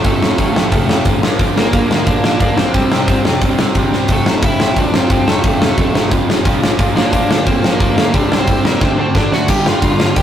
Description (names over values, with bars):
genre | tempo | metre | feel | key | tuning
punk rock | 178 BPM | 4/4 | straight | F major | A4 = 442 Hz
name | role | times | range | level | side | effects
smooth overdriven lead guitar | melody | 0.0-10.2 s | A3 to G5 | -20 LUFS | equal | none
crunchy overdriven guitar | riff | 0.0-10.2 s | F2 to D4 | -17 LUFS | right 1 dB | none
overdriven picked electric bass | bass | 0.0-10.2 s | F1 to F2 | -23 LUFS | equal | none
big rock drum kit | drums | 0.0-10.2 s | crash cymbal, hi-hat, kick drum, snare drum | -14 LUFS | equal | none
room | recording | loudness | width
light reverb | rough rehearsal-room recording | -11 LUFS | side -10 dB against mid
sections
0.0-9.5 A section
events
drum fill 3.9, 8.8-9.5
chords
0.0 F; 1.2 Bb; 2.7 C5; 4.1 F; 6.6 Bb; 8.1 C5; 8.8 D7; 9.5 G5